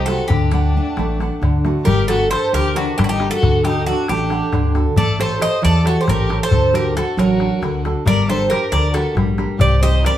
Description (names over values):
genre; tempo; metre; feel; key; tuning
greek folk, Greek bouzouki band; 272 BPM (eighths); 7/8; straight; G harmonic minor; A4 = 441 Hz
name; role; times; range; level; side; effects
Greek bouzouki; melody; 0.0-10.2 s; F#4 to Eb5; -20 LUFS; right 1 dB; none
rich violin; second line; 0.0-10.2 s; D4 to C5; -25 LUFS; left 2 dB; none
nylon-string guitar; accompaniment; 0.0-10.2 s; C3 to F#5; -21 LUFS; right 2 dB; none
upright bass; bass; 0.0-10.0 s; G1 to E2; -20 LUFS; equal; none
darbuka; percussion; 0.1-10.1 s; none; -21 LUFS; left 3 dB; none
room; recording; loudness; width
wet studio reverb, RT60 0.6 s; heard from further back in the room; -14 LUFS; side -12 dB against mid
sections
0.0-1.9 A section; 1.9-10.2 B section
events
none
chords
0.3 D; 1.9 Gm; 3.4 D; 5.0 A7; 6.5 D; 8.1 Gm; 9.6 Cm